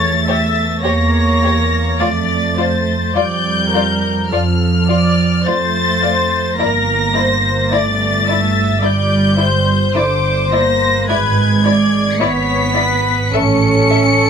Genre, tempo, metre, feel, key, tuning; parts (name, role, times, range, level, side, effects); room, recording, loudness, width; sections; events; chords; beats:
classical, slow romantic movement for string orchestra; 53 BPM; 4/4; rubato; D minor; A4 = 441 Hz
rich studio violin section; melody; 0.0-14.3 s; D6 to C#7; -19 LUFS; left 4 dB
clear studio viola section; accompaniment; 0.0-14.3 s; A4 to E5; -19 LUFS; left 1 dB
warm studio cello section; bass; 0.0-14.3 s; D3 to C#4; -18 LUFS; right 3 dB
warm studio double bass section; bass; 0.0-14.3 s; G1 to F2; -18 LUFS; right 2 dB
dark studio violin section; second line; 0.3-14.0 s; E4 to E5; -19 LUFS; left 4 dB
little or no reverb; close, detailed microphones; -12 LUFS; side -7 dB against mid
0.0-14.3 A section
0.0 A/E; 2.0 Dm/F; 6.6 Em7b5/G; 11.1 E7/G# (rootless); 13.3 A
0.84 | 1.99 3.15 4.31 5.46 | 6.59 7.73 8.84 9.95 | 11.09 12.21 13.34